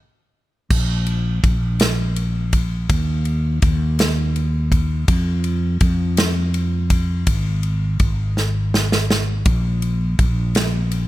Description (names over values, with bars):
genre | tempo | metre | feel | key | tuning
six-eight pop ballad | 55 BPM (dotted quarters) | 6/8 | straight | unclear | A4 = 439 Hz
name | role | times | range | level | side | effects
mellow fretless electric bass | bass | 0.7-11.1 s | Ab1 to F2 | -19 LUFS | equal | analog chorus
natural country drum kit | drums | 0.7-11.1 s | crash cymbal, kick drum, ride cymbal, snare drum | -20 LUFS | equal | none
room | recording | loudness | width
little or no reverb | none | -17 LUFS | side -16 dB against mid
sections
0.7-11.1 A section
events
stop 0.0-0.7; drum fill 8.4-9.5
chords
none